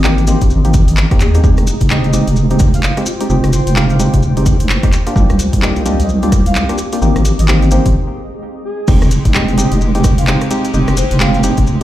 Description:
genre	UK garage, two-step garage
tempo	129 BPM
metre	4/4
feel	swing 60% on 16ths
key	F dorian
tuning	A4 = 440 Hz
part	breathy flute-like synth lead	melody	0.0-11.4 s	Ab4 to F5	-26 LUFS	left 1 dB	wide subtle chorus, ping-pong delay
part	percussive organ stab	stabs	0.0-11.6 s	Ab3 to G4	-19 LUFS	equal	chorus, ping-pong delay
part	deep soft wobble bass	bass	0.0-11.8 s	F1 to Eb2	-13 LUFS	equal	chorus
part	house drum kit	drums	0.0-11.7 s	crash cymbal, handclaps, hi-hat, rim click	-21 LUFS	equal	none
part	maracas	percussion	0.0-11.8 s	none	-28 LUFS	left 2 dB	none
part	granular cloud pad	texture	0.0-7.9 s	C4 to D6	-25 LUFS	equal	built-in reverb, sidechain pumping
part	electronic kick drum	drums	0.4-11.7 s	none	-13 LUFS	equal	none
part	clear chamber violin section	sustained chords	8.9-11.8 s	Ab3 to G4	-26 LUFS	left 2 dB	sidechain pumping
room	little or no reverb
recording	played on a big sound system in a bare room, large studio reverb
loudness	-10 LUFS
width	side -14 dB against mid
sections	0.0-8.9 A section; 8.9-11.8 B section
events	break 7.9-8.9; drop 8.9-11.8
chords	0.0 Abmaj7; 1.4 Fm7; 4.9 C7sus4; 7.0 Abmaj7; 8.9 Fm7

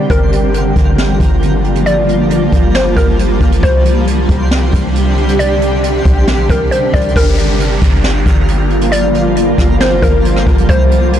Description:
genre	hip hop, atmospheric cloud-rap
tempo	136 BPM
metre	4/4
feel	half-time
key	G minor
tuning	A4 = 441 Hz
part	mallet-like synth pluck	melody	0.0-11.2 s	Bb4 to D5	-18 LUFS	equal	chorus, low-pass filter, digital delay
part	shimmering ambient pad	sustained chords	0.0-11.2 s	C3 to G4	-15 LUFS	equal	chorus, built-in reverb, sidechain pumping
part	twinkling granular texture	texture	0.0-11.2 s	D4 to G5	-27 LUFS	left 1 dB	built-in reverb
part	warm 808-style bass	bass	0.1-11.2 s	G1 to C2	-15 LUFS	equal	tube saturation
part	jazz brush drum kit	drums	0.1-11.2 s	hi-hat, kick drum, rim click, snare drum	-14 LUFS	equal	vintage 12-bit sampler grit
part	downlifter	sound effects	7.2-10.7 s	none	-26 LUFS	equal	none
room	little or no reverb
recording	blown-out, overdriven recording, overdrive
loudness	-9 LUFS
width	side -10 dB against mid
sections	0.0-7.2 A section; 7.2-11.2 B section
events	none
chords	0.1 Gm7; 3.6 Csus2; 7.2 Gm7; 10.7 Csus2

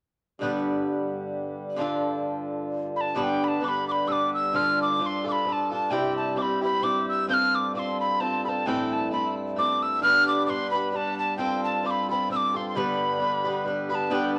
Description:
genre	celtic folk, Celtic waltz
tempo	131 BPM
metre	3/4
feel	swing 55% on 8ths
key	G mixolydian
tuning	A4 = 439 Hz
part	picked swing-style acoustic guitar	accompaniment	0.4-14.4 s	G2 to B4	-30 LUFS	equal	none
part	pedal harmonium	drone	0.4-14.4 s	G2	-36 LUFS	equal	none
part	tin whistle	melody	3.0-14.4 s	G5 to G6	-27 LUFS	equal	none
room	wet studio reverb, RT60 0.5 s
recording	none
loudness	-26 LUFS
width	mono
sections	0.4-3.2 A section; 3.2-14.1 B section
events	none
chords	0.4 G; 1.8 Dm; 3.2 G; 4.5 Dm; 5.9 C; 7.3 F; 8.7 Am; 10.0 G; 11.4 F; 12.7 G

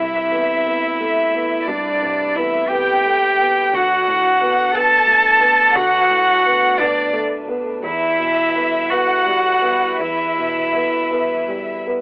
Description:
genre	neoclassical piano and strings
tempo	54-60 BPM (dotted quarters)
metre	6/8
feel	rubato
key	E minor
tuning	A4 = 441 Hz
part	warm chamber violin section	melody	0.0-11.8 s	D5 to A5	-18 LUFS	left 1 dB	none
part	warm cello	second line	0.0-11.9 s	D4 to A4	-17 LUFS	right 1 dB	none
part	dark baby grand piano	accompaniment	0.0-12.0 s	C2 to B4	-24 LUFS	equal	none
part	warm chamber string section	sustained chords	0.0-12.0 s	G3 to B4	-31 LUFS	equal	none
room	little or no reverb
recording	dry, gritty hardware recording, cassette tape, telephone sound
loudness	-14 LUFS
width	side -25 dB against mid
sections	0.0-12.0 A section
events	none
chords	0.0 Amadd9/C; 3.7 Bm7/D; 7.8 Em

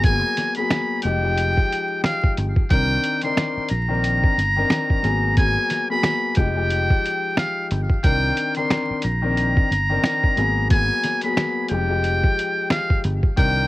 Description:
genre	hip hop, boom-bap hip-hop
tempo	90 BPM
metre	4/4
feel	swing 58% on 16ths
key	unclear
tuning	A4 = 440 Hz
part	trumpet with metal mute	melody	0.0-13.7 s	F5 to C6	-22 LUFS	right 1 dB	high-pass filter, low-pass filter
part	dark baby grand piano	accompaniment	0.0-13.7 s	Eb3 to Bb4	-25 LUFS	left 4 dB	high-pass filter, low-pass filter, cassette tape
part	fingered electric bass	bass	0.0-13.6 s	F1 to C2	-23 LUFS	equal	none
part	lo-fi sampler-style drum kit	drums	0.0-13.6 s	hi-hat, kick drum, snare drum	-20 LUFS	equal	cassette tape
part	finger snap	percussion	0.7-12.9 s	none	-40 LUFS	right 9 dB	none
room	light reverb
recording	home recording on cassette, vinyl crackle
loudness	-18 LUFS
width	side -18 dB against mid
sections	0.0-13.7 A section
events	none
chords	0.0 Abm9; 1.0 Fm9; 2.7 Cm9; 5.0 Abm9; 6.4 Fm9; 8.0 Cm9; 10.4 Abm9; 11.7 Fm9

